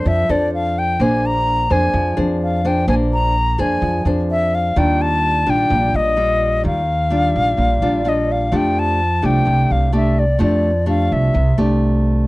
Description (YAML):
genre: bossa nova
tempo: 128 BPM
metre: 4/4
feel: straight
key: F major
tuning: A4 = 439 Hz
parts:
  - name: reedy silver concert flute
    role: melody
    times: 0.0-11.6 s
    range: D5 to Bb5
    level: -19 LUFS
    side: left 1 dB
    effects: none
  - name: nylon-string guitar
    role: accompaniment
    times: 0.0-12.3 s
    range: Bb2 to C5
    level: -20 LUFS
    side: equal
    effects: none
  - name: upright bass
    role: bass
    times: 0.0-12.2 s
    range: Bb1 to F2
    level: -19 LUFS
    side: right 1 dB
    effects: none
room: light reverb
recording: dry, close 1970s-style studio recording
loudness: -14 LUFS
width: side -20 dB against mid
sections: 0.0-12.3 A section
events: none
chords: 0.0 Bbmaj9 (rootless); 1.0 Bb9; 4.8 Ebmaj9; 8.5 F69